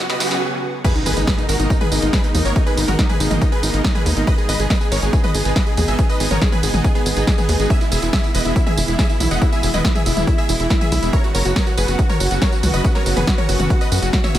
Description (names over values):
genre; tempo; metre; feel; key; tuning
uplifting trance; 140 BPM; 4/4; straight; G# minor; A4 = 440 Hz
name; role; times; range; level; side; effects
big supersaw lead; melody; 0.0-14.4 s; B3 to F#5; -24 LUFS; equal; sidechain pumping, dub echo
wide unison pluck; second line; 0.0-14.4 s; D#4 to F#5; -28 LUFS; equal; sidechain pumping, dub echo
lush unison pad; sustained chords; 0.0-14.4 s; B2 to F#4; -25 LUFS; right 1 dB; chorus, sidechain pumping
riser and impact; sound effects; 0.0-2.6 s; none; -28 LUFS; equal; none
punchy analog drum machine; drums; 0.1-14.4 s; crash cymbal, hi-hat, snare drum, tambourine, toms; -23 LUFS; equal; high-pass filter on hats, high-pass filter on toms, high-pass filter on perc, high-pass filter on snare, high-pass filter on cymbals, high-pass filter on room
electronic kick drum; drums; 0.8-14.2 s; none; -18 LUFS; equal; high-pass filter on kick, high-pass filter on room
tight sequencer bass; bass; 1.1-14.4 s; E1 to F#2; -20 LUFS; equal; sidechain pumping
room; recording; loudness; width
little or no reverb; none; -15 LUFS; side -12 dB against mid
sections
0.8-14.4 A section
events
drum fill 0.0-0.4; riser 0.0-0.4; stop 0.4-0.8; drop 0.8-14.4; impact 0.8-2.6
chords
0.0 F#sus4; 0.8 G#madd9; 7.7 E; 11.1 F#sus4